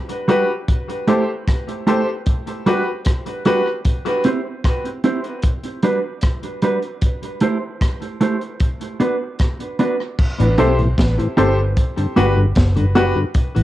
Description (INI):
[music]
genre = dub reggae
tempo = 76 BPM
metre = 4/4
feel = straight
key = A dorian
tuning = A4 = 440 Hz
[part]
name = crunchy breakbeat drum kit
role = drums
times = 0.1-13.6 s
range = crash cymbal, hi-hat, kick drum, rim click, snare drum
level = -19 LUFS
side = equal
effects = cassette tape
[part]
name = mellow electric guitar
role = accompaniment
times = 0.3-13.2 s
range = G3 to C5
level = -20 LUFS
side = right 2 dB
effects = spring reverb, cassette tape, tape echo, plate reverb
[part]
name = clear upright piano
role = stabs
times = 0.3-3.7, 10.6-13.2 s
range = F#4 to C5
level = -22 LUFS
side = left 2 dB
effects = cassette tape, tape echo, plate reverb
[part]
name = mellow tonewheel organ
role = accompaniment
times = 10.4-13.6 s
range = G2 to G4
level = -20 LUFS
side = left 1 dB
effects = chorus vibrato, slow rotary speaker, cassette tape
[part]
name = vintage muted fingered electric bass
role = bass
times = 10.4-13.6 s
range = F#1 to B1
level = -17 LUFS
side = equal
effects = tube saturation
[sound]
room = light reverb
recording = home recording on cassette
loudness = -16 LUFS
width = side -14 dB against mid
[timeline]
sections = 0.0-10.2 A section; 10.2-13.6 B section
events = break 0.0-10.2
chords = 0.0 Gmaj7; 0.7 Am7; 2.3 Gmaj7; 3.9 C; 5.4 Gmaj7; 7.0 Am7; 8.6 Bm; 10.2 Am7; 11.8 Gmaj7